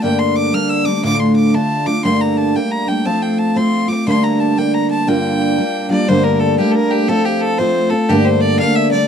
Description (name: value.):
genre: celtic folk, Celtic polka.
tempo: 119 BPM.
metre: 2/4.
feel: swing 63% on 8ths.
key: G minor.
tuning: A4 = 440 Hz.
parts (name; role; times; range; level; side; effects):
clear fiddle; melody; 0.0-9.1 s; G4 to F6; -19 LUFS; equal; none.
picked steel-string acoustic guitar; accompaniment; 0.0-9.1 s; D2 to F4; -14 LUFS; equal; none.
room: little or no reverb.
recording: dry, close 1970s-style studio recording.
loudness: -13 LUFS.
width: side -7 dB against mid.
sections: 0.0-6.1 A section; 6.1-9.1 A section.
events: none.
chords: 0.0 Gmadd9; 1.0 Dm; 2.0 Gmadd9; 3.1 F; 4.1 Gmadd9; 5.1 Gm7; 6.1 Gmadd9; 7.1 F; 8.1 Gmadd9.